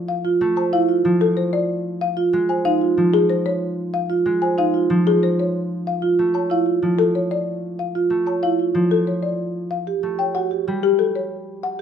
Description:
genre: classical, minimalist pattern music.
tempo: 187 BPM.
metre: 6/4.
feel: straight.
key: unclear.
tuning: A4 = 441 Hz.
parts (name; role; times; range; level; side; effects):
concert harp; accompaniment; 0.0-11.8 s; F3 to A3; -24 LUFS; left 1 dB; none.
folk marimba with soft mallets; melody; 0.1-11.8 s; G4 to A5; -22 LUFS; left 6 dB; none.
marimba with soft mallets; arpeggios; 0.2-11.8 s; D#4 to C#5; -21 LUFS; right 4 dB; none.
room: moderate large studio reverb, RT60 0.9 s.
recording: none.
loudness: -18 LUFS.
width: side -8 dB against mid.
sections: 0.0-11.8 A section.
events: none.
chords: 0.0 F; 2.2 C# (rootless); 6.0 Dm (rootless); 9.9 A7(no3).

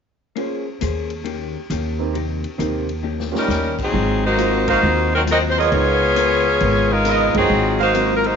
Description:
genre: jazz, big band swing.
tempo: 135 BPM.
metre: 4/4.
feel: swing 65% on 8ths.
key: Ab mixolydian.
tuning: A4 = 440 Hz.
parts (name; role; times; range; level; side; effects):
vintage hollow-body jazz guitar; accompaniment; 0.4-8.3 s; Ab2 to C5; -26 LUFS; left 11 dB; none.
warm concert grand piano; accompaniment; 0.4-8.2 s; Bb3 to C5; -28 LUFS; right 12 dB; none.
swinging big-band drum kit; drums; 0.4-8.3 s; crash cymbal, hi-hat, kick drum, ride cymbal, snare drum; -33 LUFS; left 4 dB; none.
upright bass; bass; 0.8-8.3 s; Gb1 to Eb2; -23 LUFS; right 1 dB; none.
bright saxophone section; melody; 3.4-8.4 s; Gb3 to Eb5; -17 LUFS; left 1 dB; none.
clear trumpet section; stabs; 4.7-7.9 s; F4 to F5; -24 LUFS; right 11 dB; none.
room: moderate echo chamber reverb, RT60 2.2 s.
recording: 1960s-style stereo with parts hard left and right, nothing above 7.5 kHz.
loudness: -16 LUFS.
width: side -6 dB against mid.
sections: 0.4-3.9 A section; 3.9-8.4 B section.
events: drum fill 3.0-3.5; band accent 4.6, 7.3.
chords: 0.4 Bbm9; 1.3 Eb7; 2.2 Cm7; 3.0 Eb7; 3.9 Ab13; 5.7 Db13; 7.5 Ab13.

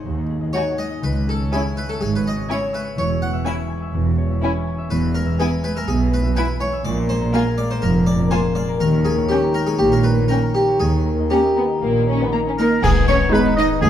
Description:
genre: cinematic, playful, whimsical film cue.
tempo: 123 BPM.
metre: 4/4.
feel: straight.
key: C# minor.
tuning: A4 = 441 Hz.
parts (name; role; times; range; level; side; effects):
harpsichord; melody; 0.0-13.9 s; G4 to F#5; -23 LUFS; equal; none.
concert harp; arpeggios; 0.0-13.9 s; G#2 to C#6; -24 LUFS; left 5 dB; none.
rich studio double bass section; bass; 0.1-13.9 s; E1 to D#2; -24 LUFS; right 3 dB; none.
warm studio cello section; bass; 0.1-13.9 s; C#2 to D#4; -23 LUFS; right 2 dB; none.
rich studio viola section; accompaniment; 0.5-13.7 s; G#3 to D#4; -25 LUFS; right 1 dB; none.
dark chamber violin section; melody; 0.6-13.7 s; G5 to B5; -32 LUFS; left 5 dB; none.
warm studio violin section; second line; 0.6-13.9 s; A#3 to D#5; -26 LUFS; left 3 dB; none.
clear oboe; second line; 12.6-13.9 s; G#4 to D#5; -22 LUFS; equal; none.
small flute group; second line; 12.6-13.9 s; G#4 to D#5; -25 LUFS; left 1 dB; none.
mellow bassoon; accompaniment; 12.8-13.9 s; B3 to D#4; -25 LUFS; left 1 dB; none.
clash cymbals and concert bass drum; percussion; 12.8-13.8 s; none; -21 LUFS; equal; none.
dark French horn section; sustained chords; 13.3-13.5 s; B3 to D#4; -29 LUFS; left 3 dB; none.
room: moderate scoring stage reverb, RT60 1.7 s.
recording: dark, warm production.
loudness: -17 LUFS.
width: side -10 dB against mid.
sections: 0.0-12.8 A section; 12.8-13.9 B section.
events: band accent 12.8-13.3.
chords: 0.0 G#7; 1.0 C#m; 3.0 C#m/E; 4.9 E; 6.9 A#5; 8.8 D#7; 10.8 D#; 12.8 G#m.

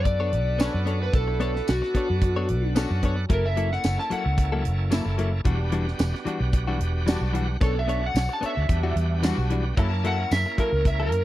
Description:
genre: straight-eighth soul blues.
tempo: 111 BPM.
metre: 4/4.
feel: swing 53% on 16ths.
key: B minor.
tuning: A4 = 440 Hz.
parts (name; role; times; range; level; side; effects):
electric slide guitar; melody; 0.0-11.2 s; F#4 to A5; -28 LUFS; equal; none.
bright tonewheel organ; accompaniment; 0.0-11.2 s; A#3 to F#5; -34 LUFS; right 4 dB; slow rotary speaker, overdrive.
vintage muted fingered electric bass; bass; 0.0-11.2 s; E1 to F#2; -25 LUFS; equal; none.
direct-recorded clean electric guitar; stabs; 0.1-11.2 s; E3 to C#5; -29 LUFS; left 5 dB; none.
tight funk drum kit; drums; 0.1-11.2 s; hi-hat, kick drum, snare drum, tambourine; -25 LUFS; equal; none.
rich studio string section; sustained chords; 0.6-10.3 s; G3 to A5; -35 LUFS; left 1 dB; none.
room: little or no reverb.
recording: dry, close 1970s-style studio recording.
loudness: -22 LUFS.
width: side -15 dB against mid.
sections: 0.0-11.2 A section.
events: electric slide guitar solo 0.0-11.2; tonewheel organ fill 2.2-3.3, 6.8-7.6.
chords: 0.0 Bm9; 3.3 F#7#9; 5.5 Em9; 7.6 Bm9; 8.7 Em9; 9.8 F#7#9.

